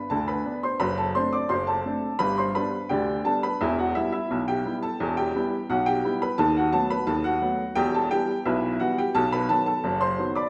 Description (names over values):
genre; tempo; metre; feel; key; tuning
ragtime piano; 86 BPM; 2/4; straight; unclear; A4 = 440 Hz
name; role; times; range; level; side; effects
clear upright piano; solo; 0.0-10.5 s; E1 to D6; -25 LUFS; equal; none
room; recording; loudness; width
wet recital hall reverb, RT60 1.5 s; recorded in a church or concert hall; -25 LUFS; mono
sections
0.0-10.5 A section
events
none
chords
0.0 G (rootless); 0.8 D7/F#; 2.2 G; 3.6 Em; 6.4 B7/D#; 7.8 Em; 9.2 B7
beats
0.11 | 0.81 1.51 | 2.20 2.90 | 3.60 4.29 | 4.99 5.68 | 6.38 7.07 | 7.77 8.46 | 9.15 9.85